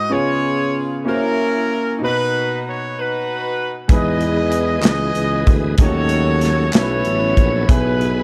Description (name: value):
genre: slow gospel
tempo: 63 BPM (dotted quarters)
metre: 6/8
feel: straight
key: E major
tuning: A4 = 440 Hz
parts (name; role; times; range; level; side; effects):
- clear horn section; melody; 0.0-8.2 s; C#4 to D#5; -23 LUFS; equal; analog delay
- clear upright piano; accompaniment; 0.0-8.2 s; G#2 to C#5; -25 LUFS; equal; none
- bright tonewheel organ; sustained chords; 3.9-8.2 s; E3 to D#5; -29 LUFS; equal; slow rotary speaker, chorus vibrato
- mellow tuba; bass; 3.9-8.2 s; A1 to E2; -22 LUFS; equal; none
- modern studio drum kit; drums; 3.9-8.2 s; hi-hat, kick drum, snare drum; -18 LUFS; equal; none
- group handclap; percussion; 4.8-7.0 s; none; -30 LUFS; equal; none
room: light reverb, small room ambience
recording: dark, warm production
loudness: -18 LUFS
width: mono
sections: 0.0-8.2 A section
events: none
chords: 0.1 C#7; 1.0 F#7; 2.0 B; 3.9 Emaj7; 5.8 D#m7b5; 6.7 B9sus4; 7.7 E/B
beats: | 0.10 1.05 | 2.00 2.94 | 3.89 4.84 | 5.79 6.74 | 7.68